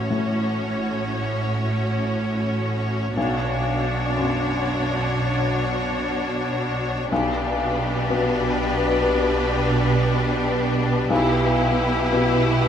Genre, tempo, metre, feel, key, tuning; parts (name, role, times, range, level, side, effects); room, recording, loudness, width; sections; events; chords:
cinematic, emotional film score for orchestra; 60 BPM; 4/4; rubato; B minor; A4 = 440 Hz
rich symphonic violin section; melody; 0.0-12.7 s; B4 to C#5; -28 LUFS; left 4 dB
warm symphonic violin section; second line; 0.0-12.7 s; F#4 to G4; -29 LUFS; left 2 dB
felt-muted upright piano; accompaniment; 0.0-12.7 s; A1 to B2; -27 LUFS; left 3 dB
rich symphonic viola section; accompaniment; 0.0-12.7 s; C#4 to E4; -27 LUFS; equal
rich symphonic cello section; bass; 0.0-12.7 s; A2 to B2; -27 LUFS; right 3 dB
warm symphonic double bass section; bass; 0.0-12.7 s; A1 to B1; -27 LUFS; right 1 dB
wet scoring stage reverb, RT60 1.9 s; -20 LUFS; side -8 dB against mid
0.0-12.7 A section
0.0 F#m/A; 3.2 Bmadd9; 7.1 G/B; 11.1 Em/B